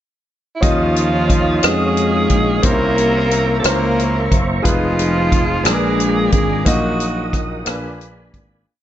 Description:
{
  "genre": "slow gospel",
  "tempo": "60 BPM (dotted quarters)",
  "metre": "6/8",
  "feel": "straight",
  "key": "Eb minor",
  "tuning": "A4 = 440 Hz",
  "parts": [
    { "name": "growling alto saxophone", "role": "melody", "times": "0.6-7.4 s", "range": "Fb4 to Bb4", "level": "-20 LUFS", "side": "right 3 dB", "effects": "slapback echo" },
    { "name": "clear baby grand piano", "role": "accompaniment", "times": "0.6-8.7 s", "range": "Bb2 to Eb5", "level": "-22 LUFS", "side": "left 1 dB", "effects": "none" },
    { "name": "mellow French horn section", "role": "sustained chords", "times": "0.6-8.7 s", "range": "C3 to Cb5", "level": "-31 LUFS", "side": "right 3 dB", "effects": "none" },
    { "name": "tonewheel organ", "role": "sustained chords", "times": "0.6-8.7 s", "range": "Bb3 to Eb6", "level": "-26 LUFS", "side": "right 2 dB", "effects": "slow rotary speaker, overdrive, chorus vibrato" },
    { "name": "fingered electric bass", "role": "bass", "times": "0.6-8.6 s", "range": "F1 to F2", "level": "-21 LUFS", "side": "equal", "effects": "none" },
    { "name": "natural country drum kit", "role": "drums", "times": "0.6-8.5 s", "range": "hi-hat, kick drum, rim click", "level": "-18 LUFS", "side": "equal", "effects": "none" },
    { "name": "warm cello", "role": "melody", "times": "0.7-7.4 s", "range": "F3 to Bb3", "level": "-22 LUFS", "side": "left 4 dB", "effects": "none" }
  ],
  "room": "light reverb",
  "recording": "nothing above 7.8 kHz",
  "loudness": "-14 LUFS",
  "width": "side -11 dB against mid",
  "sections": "0.0-0.6 pickup bar; 0.6-8.7 verse",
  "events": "fade-out 6.7-8.7",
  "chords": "0.0 N.C.; 0.6 Ebm9; 2.6 C7b9; 4.7 Fm7b5; 5.7 Bb7b9; 6.7 Ebm/Bb; 7.7 Bb7b9",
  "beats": "| 0.62 1.63 | 2.64 3.65 | 4.65 5.66 | 6.66 7.67"
}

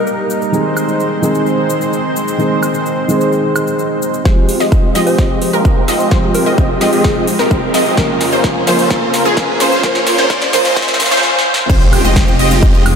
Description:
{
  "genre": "EDM, festival progressive house",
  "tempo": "129 BPM",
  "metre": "4/4",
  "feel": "straight",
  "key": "F minor",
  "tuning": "A4 = 440 Hz",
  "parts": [
    { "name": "soft struck synth lead", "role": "melody", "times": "0.0-0.1, 5.0-7.3 s", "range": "Ab4 to Eb5", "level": "-24 LUFS", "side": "left 2 dB", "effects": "none" },
    { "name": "felt-muted upright piano", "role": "accompaniment", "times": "0.0-11.7 s", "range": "Eb3 to G5", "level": "-19 LUFS", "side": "right 1 dB", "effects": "sidechain pumping, ping-pong delay" },
    { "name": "lush unison pad", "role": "sustained chords", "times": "0.0-13.0 s", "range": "F2 to C5", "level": "-19 LUFS", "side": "right 1 dB", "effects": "chorus, sidechain pumping" },
    { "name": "big-room dance drum kit", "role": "drums", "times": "0.1-13.0 s", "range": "crash cymbal, hi-hat, shaker, snare drum, woodblock", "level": "-21 LUFS", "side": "equal", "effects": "high-pass filter on perc, studio reverb, high-pass filter on snare, high-pass filter on hats, high-pass filter on cymbals" },
    { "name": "wide unison pluck", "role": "arpeggios", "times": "4.3-12.8 s", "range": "Ab4 to Eb5", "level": "-18 LUFS", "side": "equal", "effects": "wide subtle chorus, sidechain pumping, ping-pong delay" },
    { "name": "supersaw chords", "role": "riff", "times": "4.3-12.8 s", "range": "Ab3 to Eb5", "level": "-17 LUFS", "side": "right 1 dB", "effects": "phaser, sidechain pumping, low-pass filter, ping-pong delay" },
    { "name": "electronic kick drum", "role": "drums", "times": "4.3-12.7 s", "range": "none", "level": "-13 LUFS", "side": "equal", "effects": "studio reverb" },
    { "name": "riser, swell and impact", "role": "sound effects", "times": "6.7-13.0 s", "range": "none", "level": "-23 LUFS", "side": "equal", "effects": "none" },
    { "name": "wide detuned saw bass", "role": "bass", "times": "11.7-13.0 s", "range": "F1", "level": "-15 LUFS", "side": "equal", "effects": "chorus, sidechain pumping" }
  ],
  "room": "wet cathedral reverb, RT60 6.6 s",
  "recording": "dreamy mix soaked in reverb, high-pass filter",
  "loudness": "-11 LUFS",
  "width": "side -6 dB against mid",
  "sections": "0.0-4.3 A section; 4.3-11.7 B section; 11.7-13.0 C section",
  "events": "build-up 4.3-11.7; drum fill 4.3-11.2, 11.2-11.7; filter sweep on supersaw synth 4.3-11.7; filter sweep on analog synth pad 4.3-11.7; filter sweep 4.3-11.7; swell 10.8-11.7; drop 11.7-13.0; impact 11.7-13.0",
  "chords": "0.0 Eb; 0.5 Ab; 4.3 Fmadd9; 8.0 Bbm/F; 11.7 Fmadd9",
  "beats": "0.07 | 0.53 1.00 1.46 1.93 | 2.39 2.86 3.32 3.79 | 4.25 4.72 5.18 5.65 | 6.12 6.58 7.04 7.51 | 7.97 8.44 8.90 9.37 | 9.84 10.30 10.77 11.23 | 11.70 12.16 12.63"
}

